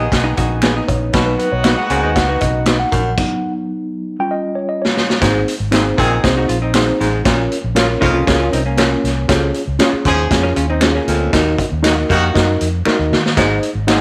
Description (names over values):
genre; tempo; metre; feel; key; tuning
uptempo 1960s-style soul; 118 BPM; 4/4; straight; B major; A4 = 440 Hz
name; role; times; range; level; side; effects
warm horn section; second line; 0.0-14.0 s; Db3 to G#4; -24 LUFS; equal; slapback echo
mellow tine electric piano; accompaniment; 0.0-14.0 s; F#3 to G#5; -22 LUFS; equal; none
clear baritone saxophone; riff; 0.0-13.6 s; Eb2 to B2; -24 LUFS; equal; none
vintage muted fingered electric bass; bass; 0.0-14.0 s; Ab1 to Eb3; -22 LUFS; equal; none
raw garage drum kit; drums; 0.1-14.0 s; crash cymbal, hi-hat, kick drum, snare drum; -20 LUFS; equal; none
hollow-body jazz guitar; riff; 0.2-3.0, 6.2-11.3 s; F#3 to G#4; -24 LUFS; equal; none
mellow electric guitar; stabs; 0.6-14.0 s; B3 to Eb5; -22 LUFS; equal; harmonic tremolo
finger snap; percussion; 0.6-14.0 s; none; -27 LUFS; equal; none
room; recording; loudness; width
light reverb, small room reverb; none; -16 LUFS; mono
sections
0.0-5.2 A section; 5.2-14.0 B section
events
tine electric piano solo 0.0-5.2; stop 3.2-5.2; drum fill 4.2-5.2, 12.9-13.4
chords
0.0 G#m; 4.2 D#9/G; 5.2 Ab; 7.3 Bbm; 9.3 Db; 11.3 Ebm; 13.4 Ab